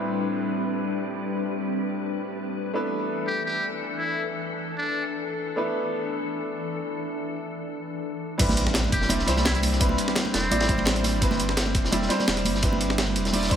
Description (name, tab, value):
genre	liquid drum and bass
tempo	170 BPM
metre	4/4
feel	straight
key	A minor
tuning	A4 = 440 Hz
part	bright baby grand piano	accompaniment	0.0-13.6 s	A2 to D5	-29 LUFS	right 1 dB	low-pass filter, digital delay
part	glassy FM pad	sustained chords	0.0-13.6 s	E3 to B5	-30 LUFS	left 2 dB	ensemble chorus, built-in reverb, sidechain pumping
part	trumpet with metal mute	melody	3.3-5.0, 8.9-10.8 s	C4 to G4	-31 LUFS	left 1 dB	dub echo
part	warm sub bass	bass	8.4-13.6 s	E1 to C2	-28 LUFS	equal	none
part	breakbeat sampler-style drum kit	drums	8.4-13.6 s	crash cymbal, hi-hat, snare drum	-27 LUFS	right 1 dB	studio reverb
part	crunchy breakbeat drum kit	drums	8.4-13.6 s	hi-hat, ride cymbal, snare drum	-30 LUFS	equal	high-pass filter on cymbals, studio reverb, high-pass filter on hats, high-pass filter on snare, high-pass filter on room
part	electronic kick drum	drums	8.4-13.6 s	none	-26 LUFS	equal	studio reverb
part	impact	sound effects	8.4-9.8 s	none	-34 LUFS	equal	none
part	congas	percussion	8.5-13.4 s	none	-32 LUFS	right 3 dB	none
room	light reverb, small room ambience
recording	none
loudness	-23 LUFS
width	side -8 dB against mid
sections	0.0-8.4 A section; 8.4-13.6 B section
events	drop 8.4-13.6; impact 8.4-9.8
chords	0.0 Am11; 2.7 E7sus4; 8.4 Am11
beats	0.28 0.63 0.98 | 1.34 1.69 2.04 2.40 | 2.75 3.10 3.45 3.81 | 4.16 4.51 4.87 5.22 | 5.57 5.92 6.28 6.63 | 6.98 7.34 7.69 8.04 | 8.39 8.75 9.10 9.45 | 9.81 10.16 10.51 10.87 | 11.22 11.57 11.93 12.28 | 12.63 12.98 13.34